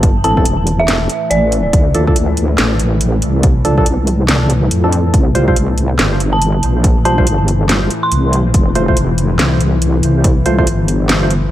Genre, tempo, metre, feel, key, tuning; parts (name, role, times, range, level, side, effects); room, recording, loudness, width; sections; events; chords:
deep dubstep; 141 BPM; 4/4; swing 60% on 16ths, half-time; A4 = 440 Hz
bowed-like drone; sustained chords; 0.2-11.5 s; A2 to E3; -20 LUFS; left 2 dB; built-in reverb
wobble bass; bass; 0.0-11.5 s; E1 to F2; -14 LUFS; equal; chorus
electronic kick drum; drums; 0.0-10.7 s; -14 LUFS; equal; overdrive
garage drum kit; drums; 0.0-11.4 s; hi-hat, snare drum; -18 LUFS; equal
dark detuned synth bell; melody; 0.2-1.6, 6.3-8.3 s; D5 to C6; -19 LUFS; right 1 dB; chorus, dub echo
percussive organ stab; stabs; 0.2-10.7 s; E3 to C5; -20 LUFS; right 1 dB; wide subtle chorus, dub echo
light reverb; echo-heavy mix; -11 LUFS; side -13 dB against mid
0.0-11.5 A section
0.0 Am; 1.7 Dm; 5.1 Csus4; 8.5 F